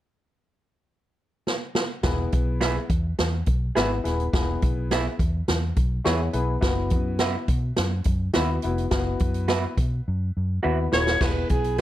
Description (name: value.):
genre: uptempo 1960s-style soul.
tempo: 105 BPM.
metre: 4/4.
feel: straight.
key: E major.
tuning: A4 = 440 Hz.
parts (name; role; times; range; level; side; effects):
swinging big-band drum kit; drums; 1.5-11.8 s; crash cymbal, hi-hat, kick drum, snare drum; -25 LUFS; equal; none.
clear grand piano; accompaniment; 2.0-11.8 s; B3 to C#5; -28 LUFS; left 4 dB; none.
vintage muted fingered electric bass; bass; 2.0-11.8 s; D#1 to B2; -26 LUFS; equal; none.
electric guitar through a small old amp; stabs; 2.6-11.8 s; F#4 to E5; -29 LUFS; right 5 dB; warbly pitch drift.
warm alto saxophone; melody; 10.9-11.8 s; G#4 to C#5; -24 LUFS; right 1 dB; none.
room: light reverb, small room ambience.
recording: dark, warm production.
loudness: -22 LUFS.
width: side -13 dB against mid.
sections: 0.0-2.0 A section; 2.0-11.2 B section.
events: drum fill 1.5-2.0, 10.1-11.2.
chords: 0.0 N.C.; 2.0 E; 6.6 Bsus4; 11.2 E.